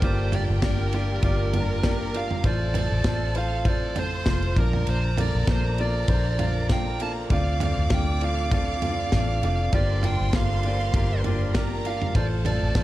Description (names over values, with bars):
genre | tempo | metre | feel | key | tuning
piano-driven pop | 99 BPM | 4/4 | swing 56% on 16ths | unclear | A4 = 438 Hz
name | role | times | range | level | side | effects
dark smooth lead guitar | melody | 0.0-12.8 s | Bb4 to A5 | -31 LUFS | right 3 dB | overdrive
bright symphonic violin section | second line | 0.0-12.8 s | G4 to D6 | -36 LUFS | left 2 dB | none
clear upright piano | accompaniment | 0.0-12.8 s | G2 to F5 | -30 LUFS | equal | none
rich studio string section | sustained chords | 0.0-12.8 s | D3 to Bb4 | -39 LUFS | right 2 dB | none
vintage muted fingered electric bass | bass | 0.0-12.8 s | F1 to D2 | -26 LUFS | equal | none
modern studio drum kit | drums | 0.0-12.8 s | kick drum, ride cymbal, snare drum, toms | -26 LUFS | equal | none
room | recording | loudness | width
small room ambience | dark, warm production | -22 LUFS | side -15 dB against mid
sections
0.0-12.8 A section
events
none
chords
0.0 Gm7; 2.4 F/A; 4.6 Bbmaj7; 7.3 Dm7; 9.7 Gm7; 12.2 F/A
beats
| 0.02 0.63 1.23 1.84 | 2.44 3.05 3.66 4.26 | 4.87 5.48 6.09 6.69 | 7.30 7.91 8.51 9.12 | 9.73 10.33 10.94 11.55 | 12.15 12.76